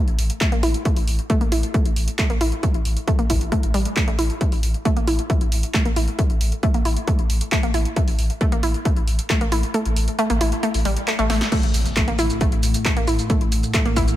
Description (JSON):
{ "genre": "driving peak-time techno", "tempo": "135 BPM", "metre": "4/4", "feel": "straight", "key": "unclear", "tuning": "A4 = 440 Hz", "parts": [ { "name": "wide unison pluck", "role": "riff", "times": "0.0-14.0 s", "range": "G3 to E4", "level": "-24 LUFS", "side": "equal", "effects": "tube saturation, sidechain pumping, ping-pong delay" }, { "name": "warm sub bass", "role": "bass", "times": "0.1-14.1 s", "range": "A1", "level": "-23 LUFS", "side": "equal", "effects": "sidechain pumping, low-pass filter" }, { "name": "punchy analog drum machine", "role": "drums", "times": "0.1-14.2 s", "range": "crash cymbal, handclaps, hi-hat, shaker, snare drum", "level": "-27 LUFS", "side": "right 1 dB", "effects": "sidechain pumping on hats, sidechain pumping on cymbals, sidechain pumping on perc" }, { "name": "electronic kick drum", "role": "drums", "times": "0.4-14.1 s", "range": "none", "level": "-20 LUFS", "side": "equal", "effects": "overdrive" }, { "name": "metallic inharmonic drone", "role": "drone", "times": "11.9-14.2 s", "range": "A2", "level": "-28 LUFS", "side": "left 2 dB", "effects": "chorus, built-in reverb, sidechain pumping" }, { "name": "impact", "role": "sound effects", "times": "11.5-13.3 s", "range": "none", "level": "-30 LUFS", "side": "equal", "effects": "none" } ], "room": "light reverb, digital ambience", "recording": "none", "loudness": "-18 LUFS", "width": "side -13 dB against mid", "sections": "0.0-11.5 A section; 11.5-14.2 B section", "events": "filter sweep on synth arpeggio sound 0.0-11.5; kick drops out 9.7-11.5; drum fill 11.3; drop 11.5-14.2; impact 11.5-13.3", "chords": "0.0 A5" }